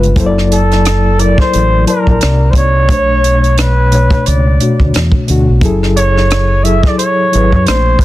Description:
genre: R&B, neo-soul.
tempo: 88 BPM.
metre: 4/4.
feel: swing 58% on 16ths.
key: unclear.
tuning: A4 = 438 Hz.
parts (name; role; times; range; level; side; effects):
mellow reed electric piano; accompaniment; 0.0-8.0 s; Bb2 to A5; -14 LUFS; left 3 dB; tremolo.
deep dub fingered electric bass; bass; 0.0-8.0 s; F#1 to F#2; -12 LUFS; equal; none.
compact cocktail drum kit; drums; 0.0-8.0 s; hi-hat, kick drum, rim click; -14 LUFS; equal; soft clipping on snare.
breathy flugelhorn; melody; 0.5-8.0 s; G#4 to E5; -14 LUFS; right 1 dB; none.
room: small room ambience.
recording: dense, heavily limited modern master.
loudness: -8 LUFS.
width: side -15 dB against mid.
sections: 0.0-8.0 A section.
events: none.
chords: 0.2 F#7alt; 2.2 Cm9; 2.9 Bm9; 5.6 F#m9.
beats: | 0.17 0.85 1.53 2.21 | 2.89 3.57 4.26 4.94 | 5.62 6.30 6.98 7.67.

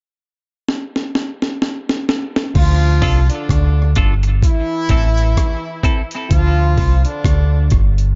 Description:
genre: dub reggae.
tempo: 64 BPM.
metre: 4/4.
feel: swing 58% on 16ths.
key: D minor.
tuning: A4 = 438 Hz.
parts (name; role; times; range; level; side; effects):
breakbeat sampler-style drum kit; drums; 0.7-8.2 s; crash cymbal, hi-hat, kick drum, rim click, snare drum; -19 LUFS; equal; none.
warm horn section; second line; 2.6-7.7 s; D3 to F4; -25 LUFS; equal; tape echo.
deep dub fingered electric bass; bass; 2.6-8.2 s; G1 to D2; -16 LUFS; equal; none.
semi-hollow electric guitar; accompaniment; 3.0-6.0 s; C4 to A4; -27 LUFS; equal; subtle chorus, tape echo.
room: digital ambience.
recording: echo-heavy mix, nothing above 7.5 kHz.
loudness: -16 LUFS.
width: mono.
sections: 0.0-2.6 A section; 2.6-8.2 B section.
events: drum fill 0.7-2.6.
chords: 0.0 N.C.; 2.6 Dm; 4.4 Am; 6.3 Dm.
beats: 0.68 1.61 | 2.55 3.49 4.43 5.37 | 6.31 7.25.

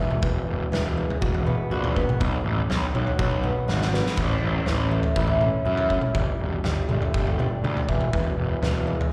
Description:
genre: quiet-loud alternative rock.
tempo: 121 BPM.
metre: 4/4.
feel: straight.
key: unclear.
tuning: A4 = 439 Hz.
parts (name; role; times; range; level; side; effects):
fingerpicked swing-style acoustic guitar; arpeggios; 0.0-9.1 s; A2 to G4; -31 LUFS; equal; slapback echo.
fuzz picked electric bass; bass; 0.0-8.9 s; E1 to F#2; -28 LUFS; equal; overdrive.
loose indie drum kit; drums; 0.1-9.1 s; crash cymbal, kick drum, snare drum, toms; -28 LUFS; equal; none.
room: light reverb.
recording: live gig heard through the venue's PA, recital hall reverb.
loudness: -24 LUFS.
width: mono.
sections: 0.0-9.1 A section.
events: drum fill 3.7-4.2.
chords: 0.0 Eadd9; 2.2 B; 4.2 A; 6.2 Gsus2; 7.9 E.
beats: | 0.22 0.72 1.21 1.71 | 2.20 2.69 3.19 3.68 | 4.18 4.67 5.17 5.66 | 6.16 6.65 7.15 7.64 | 8.13 8.63 9.12.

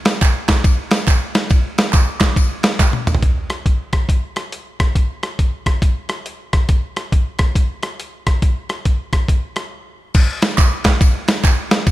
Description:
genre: gospel.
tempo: 139 BPM.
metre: 4/4.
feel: swing 64% on 8ths.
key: none.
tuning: none.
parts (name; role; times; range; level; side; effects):
boom bap sampler-style drum kit; drums; 0.1-11.9 s; crash cymbal, hi-hat, kick drum, ride cymbal, rim click, snare drum, toms; -14 LUFS; equal; none.
tambourine and handclaps; percussion; 0.1-3.1, 10.1-11.9 s; none; -23 LUFS; right 4 dB; none.
room: little or no reverb.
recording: none.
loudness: -15 LUFS.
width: side -16 dB against mid.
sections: 0.0-3.2 A section; 3.2-10.1 B section; 10.1-11.9 A section.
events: drum fill 2.8-3.2; break 9.7-10.1.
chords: none.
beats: 0.22 0.65 1.08 | 1.50 1.94 2.37 2.79 | 3.23 3.66 4.09 4.52 | 4.96 5.39 5.82 6.25 | 6.69 7.12 7.55 7.99 | 8.42 8.85 9.28 9.71 | 10.15 10.58 11.01 11.44 | 11.86.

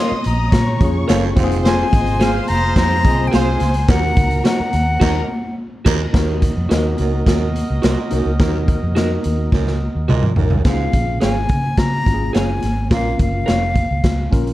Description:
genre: uptempo 1960s-style soul.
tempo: 106 BPM.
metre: 4/4.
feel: straight.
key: unclear.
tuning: A4 = 439 Hz.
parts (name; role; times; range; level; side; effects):
breathy silver concert flute; melody; 0.0-5.5, 10.7-14.3 s; F5 to C6; -22 LUFS; left 2 dB; none.
warm studio violin section; second line; 0.0-6.1 s; Bb4 to Eb6; -29 LUFS; left 1 dB; none.
tine electric piano; accompaniment; 0.0-14.5 s; C4 to Bb5; -25 LUFS; left 2 dB; overdrive, fast stereo tremolo.
electric guitar through a small old amp; stabs; 0.0-13.6 s; Gb4 to F5; -25 LUFS; right 4 dB; lush chorus.
vintage muted fingered electric bass; bass; 0.1-14.5 s; F1 to Db3; -20 LUFS; equal; none.
raw garage drum kit; drums; 0.2-14.5 s; crash cymbal, hi-hat, kick drum, snare drum, toms; -18 LUFS; equal; none.
raspy baritone saxophone; riff; 1.1-13.1 s; Eb2 to Bb2; -26 LUFS; right 9 dB; none.
warm horn section; second line; 1.6-10.3 s; F4 to F5; -29 LUFS; right 3 dB; tape echo.
room: small room ambience.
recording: dark, warm production.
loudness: -14 LUFS.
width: side -15 dB against mid.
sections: 0.0-6.1 A section; 6.1-10.7 B section; 10.7-14.5 C section.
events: band accent 5.0-6.1; drum fill 9.5-10.7; tine electric piano fill 14.3.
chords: 0.0 Bbm; 1.4 Fm; 3.9 Ebm; 10.7 Db; 12.9 Bbm.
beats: 0.53 1.08 | 1.65 2.21 2.77 3.33 | 3.89 4.45 5.01 5.58 | 6.14 6.70 7.26 7.83 | 8.39 8.96 9.52 10.09 | 10.65 11.22 11.78 12.35 | 12.91 13.48 14.04.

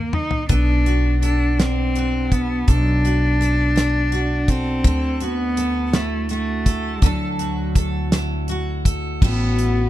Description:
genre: six-eight pop ballad.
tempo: 55 BPM (dotted quarters).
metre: 6/8.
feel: straight.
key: unclear.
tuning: A4 = 440 Hz.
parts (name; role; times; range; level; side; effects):
dark cello; melody; 0.0-9.9 s; F#3 to Eb4; -22 LUFS; equal; none.
upright bass; bass; 0.0-9.9 s; A1 to Eb2; -21 LUFS; equal; none.
damped 70s drum kit; drums; 0.1-9.8 s; crash cymbal, hi-hat, kick drum, snare drum, toms; -19 LUFS; equal; none.
picked steel-string acoustic guitar; accompaniment; 0.5-9.9 s; A2 to A4; -27 LUFS; equal; double-tracked left and right.
dark French horn section; second line; 9.2-9.9 s; F#4; -26 LUFS; left 8 dB; none.
room: small room reverb.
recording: dark, warm production.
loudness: -17 LUFS.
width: side -14 dB against mid.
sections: 0.0-9.2 A section.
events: drum fill 0.0-0.5.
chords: 0.5 Bm7; 4.9 Dadd9; 9.2 A5.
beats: | 0.50 1.59 | 2.69 3.77 | 4.85 5.94 | 7.03 8.12 | 9.22.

